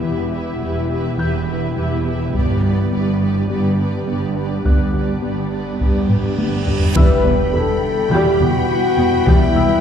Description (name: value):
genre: cinematic, hybrid orchestral and electronic film score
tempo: 104 BPM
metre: 4/4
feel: straight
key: E minor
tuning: A4 = 440 Hz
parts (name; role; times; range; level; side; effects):
- warm symphonic violin section; second line; 0.0-9.8 s; B4 to G5; -29 LUFS; left 2 dB; none
- warm symphonic viola section; accompaniment; 0.0-9.6 s; G3 to G4; -27 LUFS; right 1 dB; none
- shimmering ambient pad; sustained chords; 0.0-9.8 s; E3 to B4; -24 LUFS; equal; chorus, built-in reverb
- warm French horn section; sustained chords; 0.0-9.8 s; G3 to B4; -22 LUFS; left 3 dB; none
- soft round pluck; arpeggios; 0.0-9.7 s; E3 to G4; -26 LUFS; left 5 dB; chorus, ping-pong delay
- warm symphonic cello section; bass; 0.0-9.6 s; E2 to G2; -23 LUFS; right 2 dB; none
- warm symphonic double bass section; bass; 0.0-9.6 s; E1 to G1; -23 LUFS; right 2 dB; none
- felt-muted upright piano; texture; 0.0-9.8 s; E5 to G6; -32 LUFS; left 1 dB; ping-pong delay
- solo taiko drums; drums; 2.3-9.8 s; none; -18 LUFS; equal; none
- reverse cymbal and impact; sound effects; 6.0-9.3 s; none; -29 LUFS; equal; none
- rich symphonic violin section; melody; 7.0-9.8 s; B5; -29 LUFS; equal; none
room: wet scoring stage reverb, RT60 1.6 s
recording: heard from further back in the room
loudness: -15 LUFS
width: side -8 dB against mid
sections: 0.0-7.0 A section; 7.0-9.8 B section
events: reverse cymbal 6.0-7.0; drum fill 6.1-7.0; impact 7.0-9.3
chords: 0.0 Em; 2.3 G; 7.0 Em